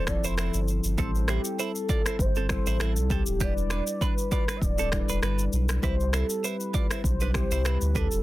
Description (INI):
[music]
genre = afrobeats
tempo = 99 BPM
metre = 4/4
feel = swing 55% on 16ths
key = C major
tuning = A4 = 440 Hz
[part]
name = warm velvety synth lead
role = melody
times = 0.0-8.2 s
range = G4 to E5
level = -33 LUFS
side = equal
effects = chorus, tape echo
[part]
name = mellow tine electric piano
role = accompaniment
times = 0.0-8.2 s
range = F3 to B4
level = -34 LUFS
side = left 3 dB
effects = analog chorus
[part]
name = direct-recorded clean electric guitar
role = riff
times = 0.0-8.1 s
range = B3 to D5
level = -34 LUFS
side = right 7 dB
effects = none
[part]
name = warm sub bass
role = bass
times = 0.0-8.2 s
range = D1 to D2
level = -27 LUFS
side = equal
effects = none
[part]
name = afro-pop drum kit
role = drums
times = 0.1-8.2 s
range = finger snaps, kick drum, rim click, shaker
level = -28 LUFS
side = equal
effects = soft clipping on snare
[sound]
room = little or no reverb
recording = dense, heavily limited modern master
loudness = -24 LUFS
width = side -16 dB against mid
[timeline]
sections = 0.0-8.2 A section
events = none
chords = 0.0 Fmaj7; 1.0 Am7; 3.4 Em7; 5.8 Cmaj7